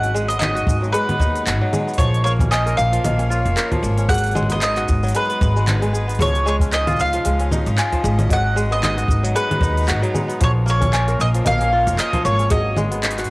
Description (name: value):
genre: folktronica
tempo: 114 BPM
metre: 4/4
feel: swing 56% on 16ths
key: G# dorian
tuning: A4 = 441 Hz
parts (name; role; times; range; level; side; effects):
- mandolin; melody; 0.0-13.3 s; B4 to F#5; -22 LUFS; equal; cassette tape
- toy piano; second line; 0.0-12.8 s; D#4 to G#5; -30 LUFS; left 2 dB; cassette tape, tape echo
- bright string quartet; sustained chords; 0.0-13.3 s; C#3 to F#5; -33 LUFS; equal; cassette tape
- kora; arpeggios; 0.0-13.3 s; E#3 to B4; -24 LUFS; equal; cassette tape
- upright bass; bass; 0.0-13.3 s; E#1 to D#2; -20 LUFS; equal; none
- organic electronic drum kit; drums; 0.0-13.3 s; cabasa, congas, handclaps, hi-hat; -24 LUFS; equal; cassette tape
- kick drum; drums; 0.7-12.6 s; none; -20 LUFS; equal; cassette tape
room: light reverb, small room ambience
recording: home recording on cassette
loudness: -16 LUFS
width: side -22 dB against mid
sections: 0.0-13.3 A section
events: none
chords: 0.0 G#m7; 2.0 A#m; 4.1 G#m7; 6.2 C#add9; 8.3 G#m7; 10.4 A#m; 12.5 G#m7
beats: 0.41 0.94 1.46 | 1.99 2.51 3.04 3.57 | 4.09 4.62 5.14 5.67 | 6.20 6.72 7.25 7.78 | 8.30 8.83 9.36 9.88 | 10.41 10.94 11.46 11.99 | 12.51 13.04